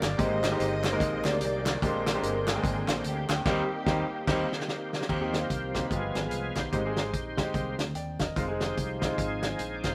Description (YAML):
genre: uptempo gospel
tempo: 147 BPM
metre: 4/4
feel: swing 60% on 8ths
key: Eb major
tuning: A4 = 440 Hz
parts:
  - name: dark studio string section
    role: melody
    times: 0.0-4.6 s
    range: Bb3 to Eb5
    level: -36 LUFS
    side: equal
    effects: none
  - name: bright tonewheel organ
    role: sustained chords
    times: 0.0-9.9 s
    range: D3 to G5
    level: -38 LUFS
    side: equal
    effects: slow rotary speaker, overdrive, chorus vibrato
  - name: fingered electric bass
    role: bass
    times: 0.0-9.9 s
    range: Fb1 to Eb2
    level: -38 LUFS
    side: equal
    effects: none
  - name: warm soul drum kit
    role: drums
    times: 0.0-9.9 s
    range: crash cymbal, hi-hat, kick drum, snare drum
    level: -33 LUFS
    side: equal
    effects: none
  - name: group handclap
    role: percussion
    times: 0.0-3.4 s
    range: none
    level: -42 LUFS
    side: equal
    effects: none
  - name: bright concert grand piano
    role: accompaniment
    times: 0.2-9.5 s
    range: G2 to G5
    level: -34 LUFS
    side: equal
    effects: none
  - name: mellow French horn section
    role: sustained chords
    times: 5.1-9.9 s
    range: Eb3 to C4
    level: -47 LUFS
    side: equal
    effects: none
room: moderate stone room reverb, RT60 1.2 s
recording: band playing live in one room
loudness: -29 LUFS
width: mono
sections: 0.0-5.1 A section; 5.1-9.9 B section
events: band accent 3.5-5.1; drum fill 4.3-5.1; tonewheel organ solo 5.1-9.9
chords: 0.2 Abmaj9; 1.8 Bb13; 3.5 Eb6; 5.9 G7b9; 6.7 Abmaj7; 8.4 Fm7